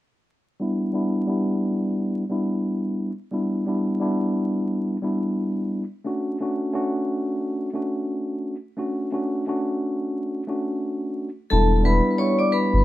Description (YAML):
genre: hip hop, boom-bap hip-hop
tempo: 88 BPM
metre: 4/4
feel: swing 56% on 16ths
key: E dorian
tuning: A4 = 440 Hz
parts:
  - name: mellow tine electric piano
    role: accompaniment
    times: 0.6-12.8 s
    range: G3 to F#4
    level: -23 LUFS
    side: equal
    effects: medium stereo tremolo, high-pass filter, low-pass filter
  - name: vibraphone with hard mallets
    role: melody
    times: 11.5-12.8 s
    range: A4 to D6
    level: -21 LUFS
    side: left 1 dB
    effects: high-pass filter, low-pass filter
  - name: soft dub sub bass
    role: bass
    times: 11.5-12.8 s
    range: E1 to G1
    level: -18 LUFS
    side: equal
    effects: none
room: moderate small room reverb, RT60 0.5 s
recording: rough home demo mix, vinyl crackle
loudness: -22 LUFS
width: side -16 dB against mid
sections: 0.6-11.5 A section; 11.5-12.8 B section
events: filter sweep on tine electric piano 0.6-11.5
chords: 0.6 Em7; 6.1 Dmaj7; 11.5 Em7